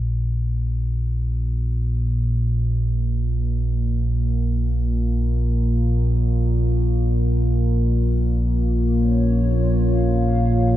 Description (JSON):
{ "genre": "dark ambient drone", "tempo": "free time", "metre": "none", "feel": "none", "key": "unclear", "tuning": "A4 = 441 Hz", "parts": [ { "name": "deep rumbling drone", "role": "drone", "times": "0.0-10.8 s", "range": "Bb1 to Bb2", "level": "-18 LUFS", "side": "equal", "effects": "built-in reverb" }, { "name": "dark analog pad", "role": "sustained chords", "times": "8.3-10.8 s", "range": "Bb3 to F5", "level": "-24 LUFS", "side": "equal", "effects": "chorus" } ], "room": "moderate huge ambient reverb, RT60 7.5 s", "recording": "none", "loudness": "-18 LUFS", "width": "side -13 dB against mid", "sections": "0.0-10.8 A section", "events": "none", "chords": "0.0 Bbm" }